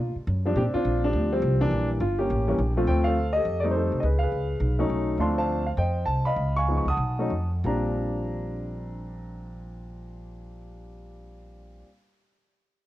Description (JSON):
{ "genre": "jazz piano trio", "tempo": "176-208 BPM", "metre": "4/4", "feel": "swing 62% on 8ths", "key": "Bb major", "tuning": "A4 = 440 Hz", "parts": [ { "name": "warm grand piano", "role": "melody", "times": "0.0-11.9 s", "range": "Bb2 to Eb6", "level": "-26 LUFS", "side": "left 1 dB", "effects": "cassette tape" }, { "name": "upright bass", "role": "bass", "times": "0.0-11.8 s", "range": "G1 to B2", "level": "-27 LUFS", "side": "equal", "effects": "none" } ], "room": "little or no reverb", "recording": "home recording on cassette", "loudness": "-23 LUFS", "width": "side -14 dB against mid", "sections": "0.0-2.9 A section; 2.9-7.6 B section; 7.6-10.4 C section", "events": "slowing down 5.2-7.6", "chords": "0.0 B5; 0.6 Bb69; 1.7 Em7b5; 2.3 A7b9; 2.9 Dm7; 3.4 F9; 4.0 Db7; 4.6 B9; 5.2 Dm7; 5.8 Fsus2; 6.4 Db9; 7.0 B7; 7.6 Bb69", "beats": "0.28 | 0.56 0.85 1.14 1.43 | 1.72 2.01 2.29 2.58 | 2.87 3.16 3.45 3.74 | 4.02 4.31 4.60 4.89 | 5.18 5.47 5.76 6.05 | 6.35 6.66 6.97 7.30 | 7.63 7.97 8.31 8.65 | 8.99 9.33 9.67 10.01" }